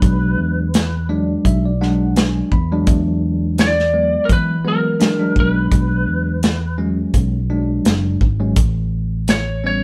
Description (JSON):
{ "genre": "straight-eighth soul blues", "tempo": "84 BPM", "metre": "4/4", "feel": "swing 55% on 16ths", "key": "E mixolydian", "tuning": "A4 = 440 Hz", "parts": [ { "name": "lightly driven lead guitar", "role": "melody", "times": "0.0-9.8 s", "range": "A#4 to D5", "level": "-23 LUFS", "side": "equal", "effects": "none" }, { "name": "bell-like tine electric piano", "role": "accompaniment", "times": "0.0-9.8 s", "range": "F#3 to B5", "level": "-23 LUFS", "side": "equal", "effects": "none" }, { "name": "fingered electric bass", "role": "bass", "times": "0.0-9.8 s", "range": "F#1 to E3", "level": "-22 LUFS", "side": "equal", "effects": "none" }, { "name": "warm soul drum kit", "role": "drums", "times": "0.0-9.5 s", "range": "hi-hat, kick drum, snare drum", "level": "-19 LUFS", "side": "equal", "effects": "none" } ], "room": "light reverb", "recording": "band playing live in one room", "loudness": "-17 LUFS", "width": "mono", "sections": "0.0-9.8 A section", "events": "tine electric piano fill 0.7-2.9", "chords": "0.0 E7; 8.6 A7" }